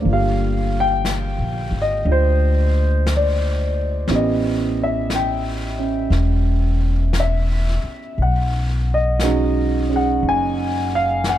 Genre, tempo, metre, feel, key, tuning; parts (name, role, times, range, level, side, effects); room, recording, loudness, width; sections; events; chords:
jazz ballad; 59 BPM; 4/4; swing 67% on 8ths; A4 = 436 Hz
warm baby grand piano; accompaniment; 0.0-11.4 s; D3 to G#5; -20 LUFS; right 1 dB
upright bass; bass; 0.0-11.4 s; E1 to D2; -20 LUFS; left 1 dB
jazz brush drum kit; drums; 0.0-11.4 s; brushed snare drum, hi-hat, snare drum; -30 LUFS; left 2 dB
little or no reverb; dark, warm production; -17 LUFS; side -12 dB against mid
0.0-11.4 A section
0.0 Gm7; 4.1 A9; 8.2 B69